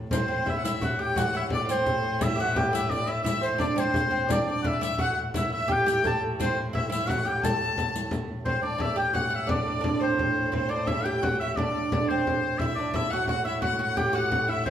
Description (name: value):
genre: medieval dance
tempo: 115 BPM (dotted quarters)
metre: 6/8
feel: straight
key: A dorian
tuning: A4 = 442 Hz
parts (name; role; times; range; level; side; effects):
- rich viola da gamba; drone; 0.0-14.7 s; A2; -34 LUFS; equal; none
- clear shawm; melody; 0.1-14.7 s; C5 to A5; -28 LUFS; left 1 dB; none
- oud; second line; 0.1-14.7 s; C4 to A4; -29 LUFS; right 3 dB; none
- rich fiddle; second line; 0.1-14.7 s; C5 to A5; -35 LUFS; left 4 dB; none
- frame drum; percussion; 0.1-14.7 s; none; -31 LUFS; left 1 dB; none
- riq; percussion; 0.1-8.2 s; none; -36 LUFS; left 3 dB; none
room: wet large studio reverb, RT60 1.4 s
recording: band playing live in one room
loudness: -24 LUFS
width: side -10 dB against mid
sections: 0.1-8.5 A section; 8.5-14.7 B section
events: none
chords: none